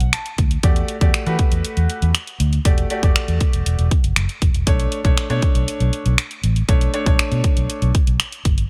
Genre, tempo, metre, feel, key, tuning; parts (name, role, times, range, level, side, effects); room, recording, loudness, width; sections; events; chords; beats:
dance-pop; 119 BPM; 4/4; straight; B minor; A4 = 440 Hz
clear concert grand piano; accompaniment; 0.0-7.9 s; A3 to A5; -28 LUFS; equal; sidechain pumping
vintage muted fingered electric bass; bass; 0.0-8.6 s; E1 to E3; -22 LUFS; equal; sidechain pumping
pop drum kit; drums; 0.0-8.7 s; finger snaps, hi-hat, kick drum; -20 LUFS; equal
little or no reverb; -18 LUFS; mono
0.0-8.7 A section
grand piano fill 0.0-0.6
0.0 Bm7; 0.6 Em11; 4.7 Bm9
0.13 | 0.64 1.14 1.64 2.15 | 2.65 3.16 3.66 4.16 | 4.67 5.17 5.68 6.18 | 6.68 7.19 7.69 8.20